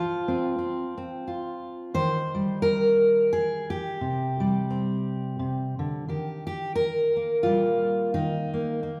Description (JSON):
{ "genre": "folk, solo fingerstyle acoustic guitar", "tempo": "87 BPM", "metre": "3/4", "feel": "swing 57% on 8ths", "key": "Eb major", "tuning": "A4 = 440 Hz", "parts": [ { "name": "fingerpicked steel-string acoustic guitar", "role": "solo", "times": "0.0-9.0 s", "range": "C3 to C5", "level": "-26 LUFS", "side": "equal", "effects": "none" } ], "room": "wet large studio reverb, RT60 1.3 s", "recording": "band playing live in one room", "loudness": "-26 LUFS", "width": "mono", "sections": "0.0-6.1 A section; 6.1-9.0 B section", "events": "none", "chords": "0.0 F5; 1.9 Eb; 4.0 C5; 6.1 Eb" }